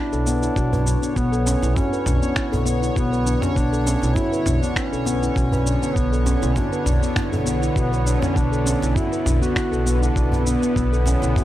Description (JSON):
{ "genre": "organic downtempo", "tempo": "100 BPM", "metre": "4/4", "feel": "swing 54% on 16ths", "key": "B minor", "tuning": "A4 = 437 Hz", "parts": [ { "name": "dark duduk", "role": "melody", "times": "0.0-11.4 s", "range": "B3 to F#4", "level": "-26 LUFS", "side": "equal", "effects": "tape echo" }, { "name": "bowed-like drone", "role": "sustained chords", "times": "0.2-11.4 s", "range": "D3 to C#5", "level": "-28 LUFS", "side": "right 2 dB", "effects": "built-in reverb, sidechain pumping" }, { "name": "handpan", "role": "arpeggios", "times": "0.0-11.4 s", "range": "B3 to B4", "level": "-25 LUFS", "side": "left 2 dB", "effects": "low-pass filter, tape echo" }, { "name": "upright bass", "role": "bass", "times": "0.1-11.3 s", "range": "B1", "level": "-22 LUFS", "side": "equal", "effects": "sidechain pumping" }, { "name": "dusty soul sampler-style drum kit", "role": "drums", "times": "0.1-11.4 s", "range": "cabasa, finger snaps, toms", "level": "-28 LUFS", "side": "right 1 dB", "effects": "none" }, { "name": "djembe", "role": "percussion", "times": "0.3-11.4 s", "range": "none", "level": "-30 LUFS", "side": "right 1 dB", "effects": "none" }, { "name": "electronic kick drum", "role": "drums", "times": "0.6-11.4 s", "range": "none", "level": "-24 LUFS", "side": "equal", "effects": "none" } ], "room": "small room ambience", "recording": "dry, gritty hardware recording", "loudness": "-18 LUFS", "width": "side -14 dB against mid", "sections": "0.0-11.4 A section", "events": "none", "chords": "0.0 Bmadd9", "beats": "0.56 | 1.16 1.76 2.36 2.96 | 3.56 4.16 4.76 5.36 | 5.96 6.56 7.16 7.76 | 8.36 8.96 9.56 10.16 | 10.76 11.36" }